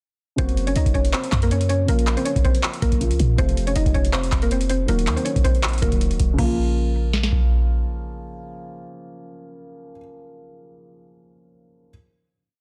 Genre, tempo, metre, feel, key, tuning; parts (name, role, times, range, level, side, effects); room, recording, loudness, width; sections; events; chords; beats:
hip hop, trap; 160 BPM; 4/4; half-time; Bb harmonic minor; A4 = 440 Hz
mallet-like synth pluck; melody; 0.4-7.5 s; Bb3 to Eb5; -28 LUFS; equal; chorus
dark concert grand piano; accompaniment; 0.4-11.9 s; C3 to Gb4; -33 LUFS; equal
clean 808-style bass; bass; 0.4-7.8 s; Eb1 to Bb2; -24 LUFS; equal
booming analog drum machine; drums; 0.4-7.4 s; crash cymbal, handclaps, hi-hat, kick drum, snare drum; -24 LUFS; equal; vintage 12-bit sampler grit
digital ambience; dense, heavily limited modern master; -20 LUFS; mono
0.4-6.4 hook; 6.4-9.4 final chord
0.4 Gb; 1.9 Bbm; 3.4 F; 4.9 Ebm; 6.4 Bbm
| 0.38 0.76 1.13 1.51 | 1.88 2.26 2.63 3.01 | 3.38 3.76 4.13 4.51 | 4.88 5.26 5.63 6.01 | 6.38 6.76 7.13 7.51 | 7.88 8.26 8.63 9.01